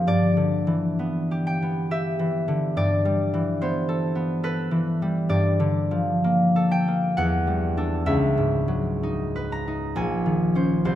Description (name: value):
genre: classical, solo harp piece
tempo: 58-74 BPM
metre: 3/4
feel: rubato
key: unclear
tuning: A4 = 440 Hz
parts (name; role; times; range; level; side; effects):
- concert harp; solo; 0.0-11.0 s; Bb1 to Bb5; -21 LUFS; equal; none
room: moderate concert hall reverb, RT60 2.3 s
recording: none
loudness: -21 LUFS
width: side -12 dB against mid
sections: 0.0-11.0 A section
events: none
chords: 0.1 G6; 2.8 Am9/G; 5.3 Gm11; 7.2 Em11; 8.1 Dbm11; 10.0 Bbm11